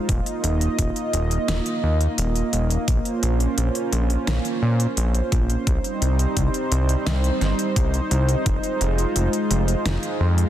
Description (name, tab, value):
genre	synthwave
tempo	86 BPM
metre	4/4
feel	straight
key	F minor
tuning	A4 = 441 Hz
part	warm analog pad	sustained chords	0.0-10.5 s	G3 to Eb5	-24 LUFS	right 2 dB	chorus, sidechain pumping
part	fat analog bass	bass	0.1-10.4 s	Eb1 to Bb2	-21 LUFS	equal	tube saturation
part	electronic kick drum	drums	0.1-8.6 s	none	-23 LUFS	equal	none
part	pop drum kit	drums	0.1-10.5 s	hi-hat, snare drum	-29 LUFS	equal	none
room	light reverb, digital ambience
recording	dense, heavily limited modern master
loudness	-19 LUFS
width	side -12 dB against mid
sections	0.0-10.5 A section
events	none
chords	0.1 Ebsus2; 2.9 Bbmadd9; 5.7 Cm; 8.5 Fm7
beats	| 0.09 0.79 1.48 2.18 | 2.88 3.58 4.27 4.97 | 5.67 6.37 7.07 7.76 | 8.46 9.16 9.86